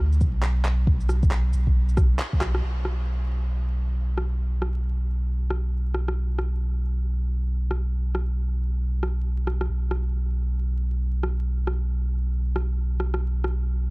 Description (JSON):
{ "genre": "future garage", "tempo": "136 BPM", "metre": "4/4", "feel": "swing 62% on 16ths", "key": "unclear", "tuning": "A4 = 442 Hz", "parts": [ { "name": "warm sub bass", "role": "bass", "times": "0.0-13.9 s", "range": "B1 to D2", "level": "-23 LUFS", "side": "equal", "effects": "sidechain pumping" }, { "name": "electronic shaker, handclaps and rim click", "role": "drums", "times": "0.1-13.6 s", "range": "none", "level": "-33 LUFS", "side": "equal", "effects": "studio ambience" }, { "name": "electronic kick drum", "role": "drums", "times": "0.2-2.4 s", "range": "none", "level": "-22 LUFS", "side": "equal", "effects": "studio ambience" } ], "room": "little or no reverb", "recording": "dark, warm production, vinyl crackle", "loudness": "-23 LUFS", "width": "side -27 dB against mid", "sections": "0.0-2.6 A section; 2.6-13.9 B section", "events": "band accent 2.2", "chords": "none", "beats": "0.43 | 0.87 1.31 1.75 2.19 | 2.63 3.08 3.52 3.96 | 4.40 4.84 5.28 5.72 | 6.16 6.61 7.05 7.49 | 7.93 8.37 8.81 9.25 | 9.69 10.13 10.57 11.02 | 11.46 11.90 12.34 12.78 | 13.22 13.66" }